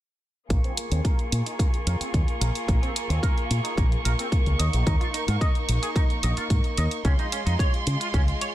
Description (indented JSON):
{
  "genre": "nu-disco, nu disco",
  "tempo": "110 BPM",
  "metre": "4/4",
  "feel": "straight",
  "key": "Bb minor",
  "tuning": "A4 = 441 Hz",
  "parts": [
    { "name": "clear chamber violin section", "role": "sustained chords", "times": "0.5-8.5 s", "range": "Ab3 to Db6", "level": "-31 LUFS", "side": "right 1 dB", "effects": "sidechain pumping, low-pass filter" },
    { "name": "semi-hollow electric guitar", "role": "riff", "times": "0.5-8.5 s", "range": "Bb3 to Eb5", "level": "-34 LUFS", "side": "right 2 dB", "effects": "analog chorus, low-pass filter, dub echo" },
    { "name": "fingered electric bass with an envelope filter", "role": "bass", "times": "0.5-8.3 s", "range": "Bb1 to Db3", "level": "-24 LUFS", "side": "equal", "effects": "none" },
    { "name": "electronic hi-hat", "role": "drums", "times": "0.5-8.5 s", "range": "none", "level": "-32 LUFS", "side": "right 1 dB", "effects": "studio reverb" },
    { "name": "electronic kick drum", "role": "drums", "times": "0.5-8.2 s", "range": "none", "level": "-23 LUFS", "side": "equal", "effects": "studio reverb" }
  ],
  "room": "little or no reverb",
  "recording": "none",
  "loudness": "-22 LUFS",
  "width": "side -14 dB against mid",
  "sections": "0.5-8.5 A section",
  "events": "filter sweep on clean electric guitar 0.5-8.5",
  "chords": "0.5 Bbm7; 4.6 Eb5; 7.0 Dbmaj7"
}